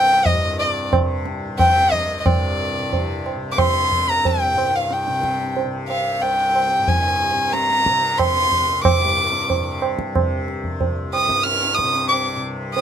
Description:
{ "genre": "indian classical, Hindustani", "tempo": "91 BPM", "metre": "5/4", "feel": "straight", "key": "C raga darbari", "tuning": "A4 = 440 Hz", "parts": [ { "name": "warm violin", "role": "melody", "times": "0.0-12.8 s", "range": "D5 to F6", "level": "-18 LUFS", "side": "equal", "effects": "none" }, { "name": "tanpura", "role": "drone", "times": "0.0-12.8 s", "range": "C2 to C3", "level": "-27 LUFS", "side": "left 2 dB", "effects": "none" }, { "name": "tabla", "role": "percussion", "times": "0.3-12.8 s", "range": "none", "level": "-21 LUFS", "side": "right 2 dB", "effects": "none" } ], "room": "light reverb", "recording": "close, detailed microphones, lossy compression artefacts", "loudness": "-17 LUFS", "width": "side -9 dB against mid", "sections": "0.0-2.3 A section; 2.3-12.8 B section", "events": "speeding up 0.0-12.8", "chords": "none", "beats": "0.25 0.92 1.59 | 2.25 2.92 3.58 4.24 4.90 | 5.56 6.22 6.88 7.53 8.19 | 8.85 9.50 10.15 10.80 11.45 | 12.10 12.75" }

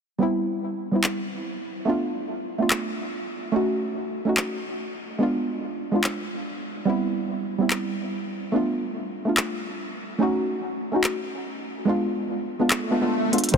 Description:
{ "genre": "future bass", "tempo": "144 BPM", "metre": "4/4", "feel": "half-time", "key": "unclear", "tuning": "A4 = 441 Hz", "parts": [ { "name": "soft round pluck", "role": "accompaniment", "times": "0.2-13.6 s", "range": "G3 to B4", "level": "-24 LUFS", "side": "right 1 dB", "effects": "chorus, sidechain pumping, tape echo" }, { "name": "pop drum kit", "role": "drums", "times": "1.0-13.6 s", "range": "handclaps, hi-hat", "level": "-28 LUFS", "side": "left 1 dB", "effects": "none" }, { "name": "swell", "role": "sound effects", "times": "12.8-13.5 s", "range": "none", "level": "-26 LUFS", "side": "equal", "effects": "none" }, { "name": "dark baby grand piano", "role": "melody", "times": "13.5-13.6 s", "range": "C4 to C5", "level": "-20 LUFS", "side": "left 3 dB", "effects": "sidechain pumping" }, { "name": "dense compressed supersaw", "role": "riff", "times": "13.5-13.6 s", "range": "C4 to A5", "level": "-26 LUFS", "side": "left 5 dB", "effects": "sidechain pumping, low-pass filter" }, { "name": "electronic kick drum", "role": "drums", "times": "13.5-13.6 s", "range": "none", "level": "-17 LUFS", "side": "left 1 dB", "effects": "soft clipping on kick" } ], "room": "moderate huge ambient reverb, RT60 7.7 s", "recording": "dense, heavily limited modern master", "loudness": "-23 LUFS", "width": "side -6 dB against mid", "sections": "0.2-13.5 A section", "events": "swell 12.8-13.5; drum fill 13.3", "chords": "0.2 Cmaj7/G; 1.9 Bm7b5/A; 3.5 F#m6/A; 5.2 G#dim7; 6.9 Cmaj7/G; 8.5 Bm7b5/A; 10.2 F#m6/A; 11.9 G#dim7", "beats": "| 0.20 0.62 1.04 1.46 | 1.87 2.29 2.71 3.12 | 3.54 3.96 4.37 4.79 | 5.21 5.62 6.04 6.46 | 6.87 7.29 7.71 8.12 | 8.54 8.96 9.37 9.79 | 10.21 10.62 11.04 11.46 | 11.87 12.29 12.71 13.12 | 13.54" }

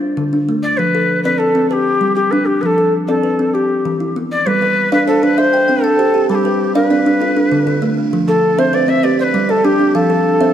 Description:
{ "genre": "southern african traditional, mbira-style interlocking cycle", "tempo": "131 BPM (dotted quarters)", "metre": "12/8", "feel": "straight", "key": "G mixolydian", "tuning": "A4 = 440 Hz", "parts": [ { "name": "kalimba", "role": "arpeggios", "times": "0.0-10.5 s", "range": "D3 to G5", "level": "-16 LUFS", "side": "equal", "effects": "none" }, { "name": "breathy bright Native American-style cedar flute", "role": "melody", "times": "0.6-10.5 s", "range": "G4 to E5", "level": "-15 LUFS", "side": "left 1 dB", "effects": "none" }, { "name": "buzzing kalimba", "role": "arpeggios", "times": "4.6-10.5 s", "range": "D3 to B5", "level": "-19 LUFS", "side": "right 6 dB", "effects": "none" } ], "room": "moderate concert hall reverb, RT60 2.2 s", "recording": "none", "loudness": "-12 LUFS", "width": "side -10 dB against mid", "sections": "0.0-4.5 A section; 4.5-10.5 B section", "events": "none", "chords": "0.0 Dm; 0.8 F; 1.7 G; 2.6 F; 3.5 Em; 4.5 G; 5.4 C; 6.3 G; 7.2 Dm; 8.1 F; 9.0 G; 9.9 F", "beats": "0.32 | 0.78 1.24 1.70 2.16 | 2.62 3.08 3.54 4.00 | 4.46 4.92 5.38 5.84 | 6.29 6.75 7.21 7.67 | 8.12 8.58 9.04 9.49 | 9.95 10.40" }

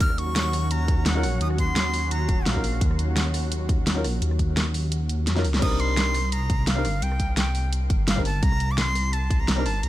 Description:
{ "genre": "liquid drum and bass", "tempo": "171 BPM", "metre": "4/4", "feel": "swing 54% on 16ths", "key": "unclear", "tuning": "A4 = 438 Hz", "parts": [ { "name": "breathy bright jazz flute", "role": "melody", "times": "0.0-2.8, 5.6-9.9 s", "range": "F5 to F6", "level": "-30 LUFS", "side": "equal", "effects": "dub echo" }, { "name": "lush unison pad", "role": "sustained chords", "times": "0.0-5.6 s", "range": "Gb3 to Gb4", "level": "-34 LUFS", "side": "equal", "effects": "chorus, sidechain pumping" }, { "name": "dark detuned saw bass", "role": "bass", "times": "0.0-9.9 s", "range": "Eb1 to F2", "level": "-25 LUFS", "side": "equal", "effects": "none" }, { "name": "electronic kick drum", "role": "drums", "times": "0.0-9.4 s", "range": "none", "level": "-24 LUFS", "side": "equal", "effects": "studio reverb" }, { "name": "pop drum kit", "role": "drums", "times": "0.0-9.9 s", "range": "crash cymbal, hi-hat, rim click, snare drum", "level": "-27 LUFS", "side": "equal", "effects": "studio reverb" }, { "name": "warm baby grand piano", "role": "accompaniment", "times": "1.1-9.6 s", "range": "Gb3 to Bb4", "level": "-32 LUFS", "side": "left 2 dB", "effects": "tape echo" } ], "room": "little or no reverb", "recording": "none", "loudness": "-21 LUFS", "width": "side -15 dB against mid", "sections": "0.0-5.6 A section; 5.6-9.9 A section", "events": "drop 0.0-5.6, 5.6-9.9; kick drops out 4.9-5.6; drum fill 5.3-5.6", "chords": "0.0 Ebm7; 5.6 Cm9", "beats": "| 0.01 0.36 0.71 1.06 | 1.41 1.76 2.11 2.46 | 2.81 3.17 3.52 3.87 | 4.22 4.57 4.92 5.27 | 5.62 5.97 6.32 6.67 | 7.03 7.38 7.73 8.08 | 8.43 8.78 9.13 9.48 | 9.83" }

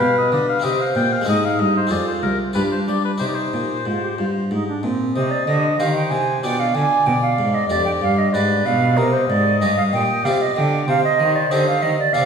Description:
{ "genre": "classical, baroque-style sonata movement with continuo", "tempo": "94 BPM", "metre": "3/4", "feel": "straight", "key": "C minor", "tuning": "A4 = 441 Hz", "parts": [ { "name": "clear oboe", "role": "melody", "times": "0.0-12.3 s", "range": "Bb4 to G5", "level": "-24 LUFS", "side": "left 6 dB", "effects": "none" }, { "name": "concert flute", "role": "second line", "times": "0.0-12.3 s", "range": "C4 to G#5", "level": "-20 LUFS", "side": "right 3 dB", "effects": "none" }, { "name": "harpsichord", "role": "accompaniment", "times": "0.0-12.3 s", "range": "C2 to Ab4", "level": "-24 LUFS", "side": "left 2 dB", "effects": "none" }, { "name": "rich cello", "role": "bass", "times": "0.0-12.3 s", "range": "C2 to G3", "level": "-22 LUFS", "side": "equal", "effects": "none" } ], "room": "wet recital hall reverb, RT60 1.5 s", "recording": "heard from further back in the room", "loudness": "-16 LUFS", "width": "side -6 dB against mid", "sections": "0.0-5.2 A section; 5.2-12.3 B section", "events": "none", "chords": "0.0 G7; 0.6 Cm; 1.3 Ab; 1.9 Fm; 2.6 G5; 3.2 Cm; 6.4 Bdim7; 7.1 G7; 9.0 Cm; 10.2 G7/C; 10.9 Cm", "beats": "0.01 0.64 | 1.27 1.91 2.56 | 3.21 3.86 4.51 | 5.15 5.79 6.43 | 7.07 7.70 8.34 | 8.97 9.61 10.24 | 10.87 11.51 12.14" }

